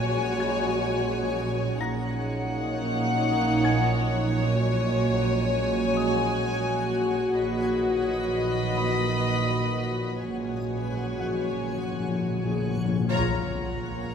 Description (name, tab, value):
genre	cinematic, suspense film score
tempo	64 BPM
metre	3/4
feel	straight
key	unclear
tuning	A4 = 441 Hz
part	rich studio violin section	melody	0.0-14.1 s	Gb5 to B5	-32 LUFS	left 5 dB	none
part	rich studio violin section	second line	0.0-14.1 s	Db5 to D#5	-33 LUFS	left 4 dB	none
part	dark studio viola section	accompaniment	0.0-14.1 s	Eb4 to Gb4	-31 LUFS	left 2 dB	none
part	backwards swelling texture	sustained chords	0.0-14.1 s	Gb4 to Gb5	-38 LUFS	equal	built-in reverb
part	clear trombone section	sustained chords	0.0-12.7 s	D#3 to Bb3	-35 LUFS	right 5 dB	none
part	mellow French horn section	sustained chords	0.0-12.7 s	Db4 to B4	-35 LUFS	left 3 dB	none
part	dark studio cello section	bass	0.0-14.1 s	A#2	-32 LUFS	right 4 dB	none
part	dark studio double bass section	bass	0.0-14.1 s	A#1	-30 LUFS	right 4 dB	none
part	felt-muted upright piano	texture	0.0-13.1 s	Gb5 to Bb6	-40 LUFS	left 4 dB	none
part	timpani	percussion	10.2-13.1 s	Bb2	-30 LUFS	left 5 dB	none
part	impact	sound effects	13.2-14.1 s	none	-36 LUFS	left 1 dB	none
room	wet scoring stage reverb, RT60 1.9 s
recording	none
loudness	-23 LUFS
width	side -7 dB against mid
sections	0.0-13.1 A section; 13.1-14.1 B section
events	timpani fill 10.2-13.1; band accent 13.1-14.0; impact 13.1-14.1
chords	0.0 Gbsus2/Bb; 1.8 Ebm7/Bb; 7.4 Bmaj7/A#; 10.2 Gbsus2/Bb; 13.1 Bbm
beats	0.86 | 1.79 2.71 3.64 | 4.57 5.50 6.43 | 7.37 8.30 9.26 | 10.22 11.18 12.14 | 13.10 14.04